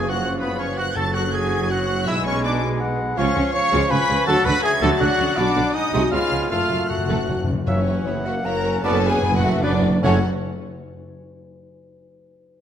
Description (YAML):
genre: classical, dramatic, fast romantic movement for symphony orchestra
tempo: 145-165 BPM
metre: 3/4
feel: straight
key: F# minor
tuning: A4 = 440 Hz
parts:
  - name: clear oboe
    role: second line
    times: 0.0-10.2 s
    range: B4 to C#6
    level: -30 LUFS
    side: right 1 dB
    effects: none
  - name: dark clarinet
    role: second line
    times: 0.0-10.2 s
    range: A4 to G#5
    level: -30 LUFS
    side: left 2 dB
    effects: none
  - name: hollow concert flute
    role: second line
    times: 0.0-10.2 s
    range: C#5 to C#6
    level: -31 LUFS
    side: left 2 dB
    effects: none
  - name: rich chamber violin section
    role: second line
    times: 0.0-10.2 s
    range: B4 to C#6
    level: -31 LUFS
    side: left 2 dB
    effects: none
  - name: warm bassoon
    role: accompaniment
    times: 0.0-10.2 s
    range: E#3 to C#4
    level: -31 LUFS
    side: equal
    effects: none
  - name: warm symphonic viola section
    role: accompaniment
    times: 0.0-10.2 s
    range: C#3 to A#4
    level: -28 LUFS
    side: left 1 dB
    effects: none
  - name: clear trombone section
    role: sustained chords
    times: 0.0-10.2 s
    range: F#2 to B3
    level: -32 LUFS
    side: right 4 dB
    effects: none
  - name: mellow French horn section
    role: sustained chords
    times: 0.0-10.2 s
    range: E3 to C#5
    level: -29 LUFS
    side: left 5 dB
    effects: none
  - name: mellow trumpet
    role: stabs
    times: 0.0-10.2 s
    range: B3 to E5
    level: -26 LUFS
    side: right 1 dB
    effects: none
  - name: dark tuba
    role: bass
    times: 0.0-10.2 s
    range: F#1 to D2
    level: -30 LUFS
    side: right 3 dB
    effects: none
  - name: warm symphonic cello section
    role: bass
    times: 0.0-10.2 s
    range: F#2 to D3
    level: -27 LUFS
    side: right 2 dB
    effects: none
  - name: warm symphonic double bass section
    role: bass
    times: 0.0-10.2 s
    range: F#1 to D2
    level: -28 LUFS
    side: right 3 dB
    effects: none
  - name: timpani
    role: percussion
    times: 0.0-1.5, 6.5-10.2 s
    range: F#2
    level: -28 LUFS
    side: left 2 dB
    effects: none
  - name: warm symphonic violin section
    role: melody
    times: 0.1-10.3 s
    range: A4 to C#7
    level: -28 LUFS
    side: left 2 dB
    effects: none
room: moderate concert hall reverb, RT60 1.7 s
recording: none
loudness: -18 LUFS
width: side -9 dB against mid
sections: 0.0-7.7 A section; 7.7-10.0 B section; 10.0-11.2 C section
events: timpani fill 6.5-7.7, 8.8-10.0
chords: 0.0 C#7/F#; 1.0 F#m; 2.1 E13/B; 3.2 C#; 4.3 Dmaj7; 5.4 Bm; 5.7 G#7; 6.1 C#7; 6.5 F#m; 7.7 F#7; 8.8 Bm/F#; 10.0 F#m